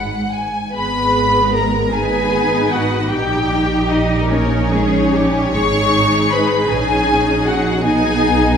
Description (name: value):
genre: classical, slow romantic movement for string orchestra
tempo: 46-54 BPM (dotted quarters)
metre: 6/8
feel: rubato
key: G# minor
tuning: A4 = 441 Hz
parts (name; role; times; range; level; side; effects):
- rich symphonic violin section; melody; 0.0-8.6 s; C#5 to C#6; -19 LUFS; left 2 dB; none
- rich symphonic violin section; second line; 0.0-8.6 s; C#4 to G#5; -20 LUFS; left 2 dB; none
- rich symphonic cello section; bass; 0.0-8.6 s; G#2 to B4; -23 LUFS; right 2 dB; none
- rich symphonic double bass section; bass; 0.0-8.6 s; G#1 to B1; -21 LUFS; right 3 dB; none
- rich studio viola section; accompaniment; 0.7-8.6 s; G3 to D#4; -19 LUFS; equal; none
room: wet recital hall reverb, RT60 1.5 s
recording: heard from further back in the room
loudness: -14 LUFS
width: side -7 dB against mid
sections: 0.7-8.6 A section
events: none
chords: 0.0 N.C.; 0.7 G#m; 3.1 D#7/A#; 5.5 G#5; 7.8 G#m/B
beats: | 0.75 1.93 | 3.11 4.29 | 5.54 6.70 | 7.84